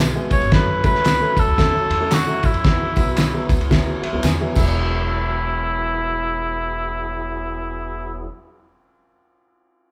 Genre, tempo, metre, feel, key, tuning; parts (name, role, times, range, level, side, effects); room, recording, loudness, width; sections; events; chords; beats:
uptempo 1960s-style soul; 113 BPM; 4/4; swing 60% on 8ths; E major; A4 = 440 Hz
tonewheel organ; sustained chords; 0.0-8.3 s; E3 to A4; -36 LUFS; equal
upright bass; bass; 0.0-8.3 s; E1 to F#2; -28 LUFS; equal
handclaps and tambourine; percussion; 0.0-5.1 s; -36 LUFS; equal
dark upright piano; accompaniment; 0.1-8.3 s; E3 to G#5; -30 LUFS; equal
warm cor anglais; melody; 0.3-8.3 s; E4 to C#5; -24 LUFS; equal
cloth-damped thuddy drum kit; drums; 0.3-4.7 s; crash cymbal, kick drum, ride cymbal, snare drum; -22 LUFS; equal
moderate large studio reverb, RT60 1.2 s; band playing live in one room; -20 LUFS; mono
0.0-4.8 A section; 4.8-9.0 B section
upright piano fill 3.7-4.8
0.0 E; 0.5 F#m; 2.7 Eadd9
| 0.52 1.06 1.59 2.12 | 2.65 3.18 3.72 4.25 | 4.78 5.31 5.85 6.38 | 6.91 7.45 7.98